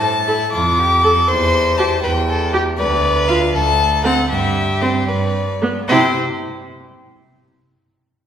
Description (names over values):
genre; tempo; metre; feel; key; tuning
quick classical-period movement for string quartet; 78 BPM (dotted quarters); 6/8; rubato; C major; A4 = 435 Hz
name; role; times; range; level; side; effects
warm violin; melody; 0.0-6.2 s; C5 to D6; -18 LUFS; left 3 dB; none
warm violin; second line; 0.0-6.2 s; E4 to C5; -21 LUFS; left 1 dB; none
rich cello; bass; 0.0-6.2 s; D2 to C3; -20 LUFS; right 2 dB; none
warm viola; accompaniment; 0.3-6.2 s; B3 to A4; -22 LUFS; right 2 dB; none
room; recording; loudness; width
wet recital hall reverb, RT60 1.7 s; recorded in a church or concert hall; -14 LUFS; side -9 dB against mid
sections
0.0-5.9 A section; 5.9-7.5 B section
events
none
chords
0.0 A5; 0.5 Dm/F; 1.3 C/E; 2.8 Dm; 3.5 D5; 4.3 C/G; 5.1 G; 5.9 C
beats
0.53 | 1.29 2.04 | 2.79 3.54 | 4.31 5.08 | 5.88